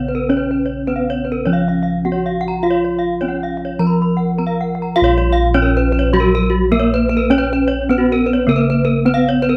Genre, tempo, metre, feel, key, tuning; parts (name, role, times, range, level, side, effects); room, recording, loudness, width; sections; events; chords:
Balinese gamelan; 103 BPM; 4/4; straight; Bb pelog; A4 = 440 Hz
gamelan-type bronze metallophone; melody; 0.0-9.6 s; Gb3 to Bb4; -21 LUFS; equal; slapback echo
gamelan-type bossed gongs; bass; 0.0-9.6 s; Bb1 to F4; -20 LUFS; equal
gamelan-type bronze metallophone; arpeggios; 0.1-9.6 s; Gb4 to Cb6+35c; -22 LUFS; equal
small room ambience; dry, close 1970s-style studio recording; -16 LUFS; mono
0.0-9.6 A section